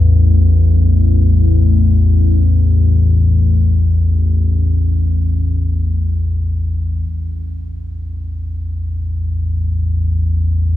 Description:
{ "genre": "ambient", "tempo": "free time", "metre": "none", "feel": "none", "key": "unclear", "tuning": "A4 = 440 Hz", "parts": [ { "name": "deep rumbling drone", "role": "solo", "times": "0.0-10.8 s", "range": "A1 to E2", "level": "-12 LUFS", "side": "left 1 dB", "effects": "built-in reverb" } ], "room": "little or no reverb", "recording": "studio reverb", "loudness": "-12 LUFS", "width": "side -14 dB against mid", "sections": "0.0-7.1 A section; 7.1-10.8 B section", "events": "none", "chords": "0.0 A5", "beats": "free time" }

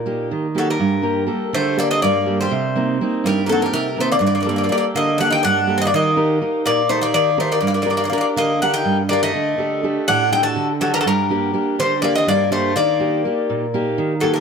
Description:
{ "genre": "greek folk, Greek bouzouki band", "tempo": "246 BPM (eighths)", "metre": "7/8", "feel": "straight", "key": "unclear", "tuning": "A4 = 440 Hz", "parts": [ { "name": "Greek bouzouki", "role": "melody", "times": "0.0-14.4 s", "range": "A4 to A5", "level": "-19 LUFS", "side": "left 3 dB", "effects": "none" }, { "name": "Greek bouzouki", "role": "second line", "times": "0.0-14.4 s", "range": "F#3 to F#4", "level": "-25 LUFS", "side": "left 2 dB", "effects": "none" }, { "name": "fingerpicked steel-string acoustic guitar", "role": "accompaniment", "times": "0.0-14.4 s", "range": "G2 to Bb4", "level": "-20 LUFS", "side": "right 3 dB", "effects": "none" } ], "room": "moderate plate reverb, RT60 3.1 s", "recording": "none", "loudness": "-16 LUFS", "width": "side -6 dB against mid", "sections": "0.8-14.4 A section", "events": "none", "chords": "0.0 Eb; 0.8 Gmadd9; 2.5 Cm7; 4.2 Gmadd9; 5.9 Eb; 7.6 Gm; 9.3 Dsus4; 11.1 Gm; 12.8 Eb", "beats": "0.08 0.32 0.57 | 0.81 1.05 1.30 1.54 1.79 2.03 2.27 | 2.52 2.76 3.00 3.25 3.49 3.74 3.98 | 4.22 4.47 4.71 4.96 5.20 5.44 5.69 | 5.93 6.18 6.42 6.66 6.91 7.15 7.40 | 7.64 7.88 8.13 8.37 8.62 8.86 9.10 | 9.35 9.59 9.84 10.08 10.32 10.57 10.81 | 11.06 11.30 11.54 11.79 12.03 12.28 12.52 | 12.76 13.01 13.25 13.49 13.74 13.98 14.23" }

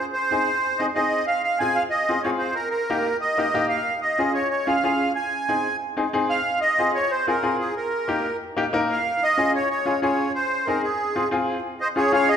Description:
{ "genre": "latin", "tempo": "185 BPM", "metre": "4/4", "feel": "straight", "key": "unclear", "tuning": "A4 = 440 Hz", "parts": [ { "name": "accordion", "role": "melody", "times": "0.0-12.4 s", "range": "Ab4 to Ab5", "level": "-22 LUFS", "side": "right 1 dB", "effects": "light tremolo tuning" }, { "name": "bright upright piano", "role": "accompaniment", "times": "0.3-12.3 s", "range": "Bb3 to Bb4", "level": "-24 LUFS", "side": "left 2 dB", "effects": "none" } ], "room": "wet recital hall reverb, RT60 1.8 s", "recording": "recorded in a church or concert hall", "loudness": "-20 LUFS", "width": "side -8 dB against mid", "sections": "0.0-11.6 A section", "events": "none", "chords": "0.0 Ab; 1.3 Fm; 2.6 Eb; 3.9 Db; 5.2 Ab; 6.5 Fm; 7.8 Eb; 9.1 Db; 10.3 Ab; 11.0 Fm; 11.6 Db", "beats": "0.31 0.64 0.96 | 1.28 1.60 1.93 2.25 | 2.58 2.90 3.22 3.55 | 3.87 4.19 4.52 4.84 | 5.16 5.49 5.81 6.14 | 6.46 6.78 7.11 7.43 | 7.75 8.08 8.40 8.73 | 9.05 9.37 9.70 10.02 | 10.35 10.67 10.99 11.32 | 11.64 11.97 12.29" }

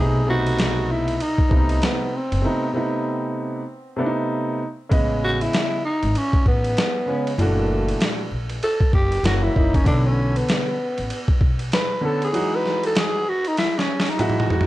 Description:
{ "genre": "hip hop, jazz-hop", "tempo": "97 BPM", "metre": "4/4", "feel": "swing 61% on 16ths", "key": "unclear", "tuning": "A4 = 442 Hz", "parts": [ { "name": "growling tenor saxophone", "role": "melody", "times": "0.0-14.7 s", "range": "A3 to B4", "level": "-24 LUFS", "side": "equal", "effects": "tape echo" }, { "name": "warm concert grand piano", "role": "accompaniment", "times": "0.0-14.7 s", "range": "A#2 to D#5", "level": "-24 LUFS", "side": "right 1 dB", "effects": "none" }, { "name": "upright bass", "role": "bass", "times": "0.0-11.7 s", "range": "F#1 to C2", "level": "-23 LUFS", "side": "equal", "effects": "none" }, { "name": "boom bap sampler-style drum kit", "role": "drums", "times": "0.5-14.7 s", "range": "hi-hat, kick drum, ride cymbal, snare drum, toms", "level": "-22 LUFS", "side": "equal", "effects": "vintage 12-bit sampler grit" } ], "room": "moderate studio reverb, RT60 0.6 s", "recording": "dark, warm production", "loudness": "-19 LUFS", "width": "side -16 dB against mid", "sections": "0.0-4.9 A section; 4.9-14.7 B section", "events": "break 2.4-4.9; tenor saxophone solo 4.9-14.7; drum fill 13.6-14.7", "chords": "0.0 B7b9; 4.9 Amaj9#11; 7.4 F#7alt; 9.2 F#7; 9.9 Bm9; 12.3 Emaj9", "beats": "0.59 1.21 1.82 | 2.44 3.06 3.68 4.30 | 4.92 5.53 6.15 6.77 | 7.39 8.01 8.63 9.25 | 9.86 10.48 11.10 11.72 | 12.34 12.96 13.58 14.19" }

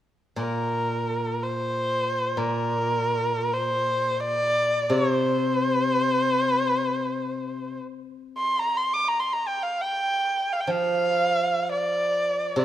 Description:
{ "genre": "chinese traditional", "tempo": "free time", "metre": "none", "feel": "none", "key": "C shang mode", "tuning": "A4 = 440 Hz", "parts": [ { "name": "warm erhu", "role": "melody", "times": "0.4-12.6 s", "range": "Bb4 to D6", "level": "-24 LUFS", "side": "equal", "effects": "none" }, { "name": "steel-string zither", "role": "accompaniment", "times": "0.4-12.6 s", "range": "Bb2 to F3", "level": "-27 LUFS", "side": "left 1 dB", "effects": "none" } ], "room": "moderate scoring stage reverb, RT60 1.6 s", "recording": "none", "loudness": "-22 LUFS", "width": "side -12 dB against mid", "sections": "0.0-12.6 A section", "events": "none", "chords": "none", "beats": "free time" }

